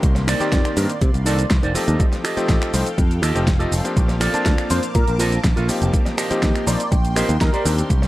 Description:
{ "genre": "nu-disco, nu disco", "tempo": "122 BPM", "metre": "4/4", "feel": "straight", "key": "unclear", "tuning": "A4 = 440 Hz", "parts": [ { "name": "bright electric grand piano", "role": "accompaniment", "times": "0.0-8.1 s", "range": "Eb3 to A5", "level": "-26 LUFS", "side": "left 2 dB", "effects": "sidechain pumping, tape echo" }, { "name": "lush unison pad", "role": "sustained chords", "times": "0.0-8.1 s", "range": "Bb3 to D6", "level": "-31 LUFS", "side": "left 1 dB", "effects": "chorus, phaser, sidechain pumping" }, { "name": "picked electric bass", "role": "bass", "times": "0.0-8.1 s", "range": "F1 to C3", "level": "-20 LUFS", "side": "equal", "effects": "sidechain pumping" }, { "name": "electronic kick drum", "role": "drums", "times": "0.0-8.0 s", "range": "none", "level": "-18 LUFS", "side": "equal", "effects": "overdrive" }, { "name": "pop drum kit", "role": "drums", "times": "0.0-8.1 s", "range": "finger snaps, hi-hat, shaker, snare drum", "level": "-26 LUFS", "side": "equal", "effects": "overdrive" }, { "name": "electric guitar with an envelope filter", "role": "riff", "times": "0.2-8.1 s", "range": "Eb4 to Bb5", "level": "-26 LUFS", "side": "right 3 dB", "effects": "lush chorus, tape echo" }, { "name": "wide unison lead", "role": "melody", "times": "4.7-7.8 s", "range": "Bb4 to D5", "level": "-28 LUFS", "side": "left 1 dB", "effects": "analog chorus, tape echo" } ], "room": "digital ambience", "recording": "dry, gritty hardware recording", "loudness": "-16 LUFS", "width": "side -16 dB against mid", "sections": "0.0-8.1 A section", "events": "clean electric guitar fill 6.4-7.9", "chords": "0.0 F9; 5.9 Eb6" }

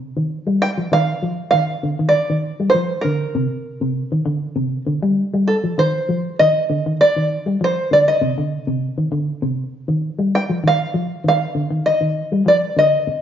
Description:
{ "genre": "afrobeat", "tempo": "99 BPM", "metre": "4/4", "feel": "straight", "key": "unclear", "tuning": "A4 = 440 Hz", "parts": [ { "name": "electric guitar with an envelope filter", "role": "arpeggios", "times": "0.2-13.1 s", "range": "C3 to G3", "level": "-20 LUFS", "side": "left 1 dB", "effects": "none" }, { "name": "open-back banjo", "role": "melody", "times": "0.6-13.2 s", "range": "A4 to G5", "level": "-17 LUFS", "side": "right 1 dB", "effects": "none" } ], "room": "wet stone room reverb, RT60 1.3 s", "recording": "band playing live in one room, nothing above 7.6 kHz", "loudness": "-16 LUFS", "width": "side -9 dB against mid", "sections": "0.0-13.2 A section", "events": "none", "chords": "0.0 Cm (rootless); 0.9 Ebmaj7sus2; 3.4 C7(no3); 5.8 F5; 8.2 Cm; 10.6 Ebmaj7sus2" }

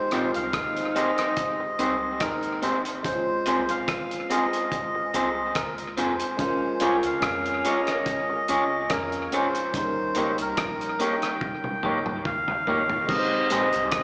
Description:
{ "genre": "lovers rock reggae", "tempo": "72 BPM", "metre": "4/4", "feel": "swing 54% on 16ths", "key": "Ab major", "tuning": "A4 = 439 Hz", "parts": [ { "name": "melodica", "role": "melody", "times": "0.0-14.0 s", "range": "Bb4 to G5", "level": "-30 LUFS", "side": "equal", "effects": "tape echo, slapback echo" }, { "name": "warm saxophone section", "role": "second line", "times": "0.0-9.5 s", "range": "Ab3 to F4", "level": "-33 LUFS", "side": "equal", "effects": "none" }, { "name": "barky tine electric piano", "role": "accompaniment", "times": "0.0-14.0 s", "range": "G3 to C5", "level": "-35 LUFS", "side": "equal", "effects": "overdrive, slapback echo" }, { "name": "electric guitar through a small old amp", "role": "stabs", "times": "0.1-13.7 s", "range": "Ab3 to Db5", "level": "-30 LUFS", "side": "equal", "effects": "spring reverb, tape echo, slapback echo" }, { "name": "deep dub fingered electric bass", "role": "bass", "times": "0.1-14.0 s", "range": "F1 to F2", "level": "-45 LUFS", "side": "equal", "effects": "none" }, { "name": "cloth-damped thuddy drum kit", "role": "drums", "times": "0.1-14.0 s", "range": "crash cymbal, hi-hat, kick drum, rim click, toms", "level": "-33 LUFS", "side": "equal", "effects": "tape echo" }, { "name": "mellow tonewheel organ", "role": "accompaniment", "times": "13.3-13.8 s", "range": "Ab2 to G4", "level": "-45 LUFS", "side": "equal", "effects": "none" } ], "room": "moderate lush hall reverb, RT60 2.7 s", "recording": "live gig heard through the venue's PA, club reverb, small speaker sound", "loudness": "-26 LUFS", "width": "mono", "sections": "0.0-13.1 A section", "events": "drum fill 11.4-13.1", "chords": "0.0 Abmaj7; 3.0 Dbmaj7; 6.4 Bbm7; 9.7 Eb7; 13.1 Abmaj7" }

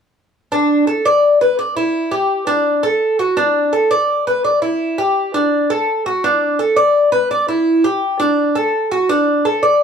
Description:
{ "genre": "latin", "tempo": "168 BPM", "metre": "4/4", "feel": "straight", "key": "D major", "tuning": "A4 = 440 Hz", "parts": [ { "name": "Cuban tres", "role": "solo", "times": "0.5-9.8 s", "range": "D4 to D5", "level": "-13 LUFS", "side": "equal", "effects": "none" } ], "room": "wet studio reverb, RT60 0.8 s", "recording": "dark, warm production", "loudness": "-13 LUFS", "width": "side -7 dB against mid", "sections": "0.5-9.8 A section", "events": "none", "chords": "none" }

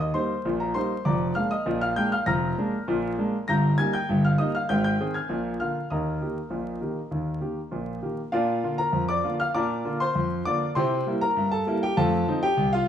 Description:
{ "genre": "ragtime piano", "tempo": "99 BPM", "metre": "2/4", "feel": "straight", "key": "Eb major, Bb major from 8.3 s", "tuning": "A4 = 439 Hz", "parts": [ { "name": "warm concert grand piano", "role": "solo", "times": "0.0-12.9 s", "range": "F1 to Bb6", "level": "-23 LUFS", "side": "equal", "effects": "none" } ], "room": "wet large studio reverb, RT60 1.0 s", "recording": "band playing live in one room, vinyl crackle", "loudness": "-23 LUFS", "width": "side -9 dB against mid", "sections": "0.0-8.3 A section; 8.3-12.9 B section", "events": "none", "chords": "0.0 Eb; 1.0 Bb7/F; 3.5 Eb/G; 4.7 Ab; 5.3 Bb7; 5.9 Eb; 8.3 Bb; 10.8 C7; 12.0 F7" }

